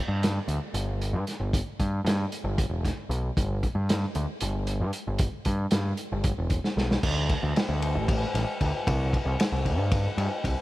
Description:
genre	psychedelic rock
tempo	229 BPM (eighths)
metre	7/8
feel	straight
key	unclear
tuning	A4 = 442 Hz
part	growling picked electric bass	bass	0.1-10.5 s	E1 to G2	-27 LUFS	equal	overdrive
part	vintage drum kit	drums	0.2-10.6 s	crash cymbal, hi-hat, kick drum, ride cymbal, snare drum	-28 LUFS	equal	none
room	light reverb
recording	none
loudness	-25 LUFS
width	side -17 dB against mid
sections	0.0-7.0 A section; 7.0-10.6 B section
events	drum fill 6.6-7.0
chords	none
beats	0.22 0.49 0.75 1.01 1.27 | 1.53 1.79 2.06 2.32 2.58 2.84 3.10 | 3.36 3.62 3.89 4.15 4.41 4.67 4.93 | 5.19 5.46 5.72 5.98 6.24 6.50 6.76 | 7.03 7.29 7.55 7.81 8.07 8.34 8.60 | 8.86 9.12 9.38 9.64 9.91 10.17 10.43

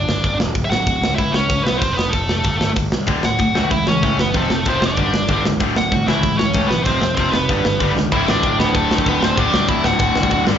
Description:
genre	punk rock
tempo	190 BPM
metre	4/4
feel	straight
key	unclear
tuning	A4 = 442 Hz
part	nasal lead guitar with a parked wah	melody	0.0-10.4 s	A3 to F#5	-20 LUFS	right 1 dB	overdrive, slapback echo
part	fuzz picked electric bass	bass	0.0-10.6 s	D1 to C#2	-22 LUFS	equal	overdrive
part	tight metal drum kit	drums	0.1-10.5 s	crash cymbal, hi-hat, kick drum, snare drum	-21 LUFS	equal	none
part	distorted electric guitar	riff	3.1-10.6 s	D2 to A3	-24 LUFS	right 13 dB	distortion
part	overdriven electric guitar	riff	3.1-10.6 s	D2 to A3	-22 LUFS	left 13 dB	slapback echo
room	little or no reverb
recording	live gig heard through the venue's PA, club reverb, nothing above 7.6 kHz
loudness	-15 LUFS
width	side -9 dB against mid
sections	0.0-8.1 A section; 8.1-10.6 B section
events	drum fill 8.0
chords	0.0 G5; 0.6 D; 1.0 Bsus24; 1.8 F; 2.4 Gsus24; 3.1 D; 3.6 A/C#; 4.3 F; 5.0 G5; 5.6 D; 6.1 A/C#; 6.9 F5; 7.5 G; 8.1 D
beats	0.24 | 0.56 0.87 1.19 1.50 | 1.82 2.13 2.45 2.76 | 3.08 3.40 3.71 4.03 | 4.34 4.66 4.97 5.29 | 5.60 5.92 6.23 6.55 | 6.86 7.18 7.49 7.81 | 8.12 8.44 8.75 9.06 | 9.38 9.69 10.00 10.31

